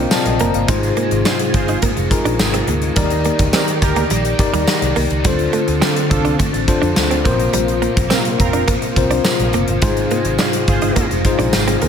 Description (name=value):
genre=1980s-style pop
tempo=105 BPM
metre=4/4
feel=straight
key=unclear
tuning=A4 = 440 Hz
part: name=bell-like tine electric piano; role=accompaniment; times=0.0-11.9 s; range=Ab2 to Bb5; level=-20 LUFS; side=left 5 dB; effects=medium stereo tremolo
part: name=cranked stack guitar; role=accompaniment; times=0.0-11.9 s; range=Ab2 to Eb4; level=-26 LUFS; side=right 1 dB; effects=overdrive, ensemble chorus
part: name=ensemble organ-string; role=sustained chords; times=0.0-11.9 s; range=C3 to D5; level=-23 LUFS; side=equal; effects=ensemble chorus
part: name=direct-recorded clean electric guitar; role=riff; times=0.0-11.9 s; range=G3 to Eb4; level=-24 LUFS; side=right 7 dB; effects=analog chorus, ping-pong delay
part: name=vintage muted fingered electric bass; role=bass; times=0.0-11.9 s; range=F1 to F2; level=-21 LUFS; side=equal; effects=none
part: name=gated 80s drum kit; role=drums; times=0.1-11.9 s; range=hi-hat, kick drum, snare drum, tambourine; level=-18 LUFS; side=equal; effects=none
part: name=analog synth brass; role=stabs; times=1.3-11.0 s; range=C4 to C5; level=-24 LUFS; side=right 4 dB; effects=chorus
room=light reverb, small room ambience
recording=none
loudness=-14 LUFS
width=side -7 dB against mid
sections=0.0-11.9 A section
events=tine electric piano fill 0.0-0.7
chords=0.0 Bbsus2; 0.7 Ab6; 3.0 Ebmaj7; 5.3 Dm7; 7.3 Bbsus2; 9.8 Ab6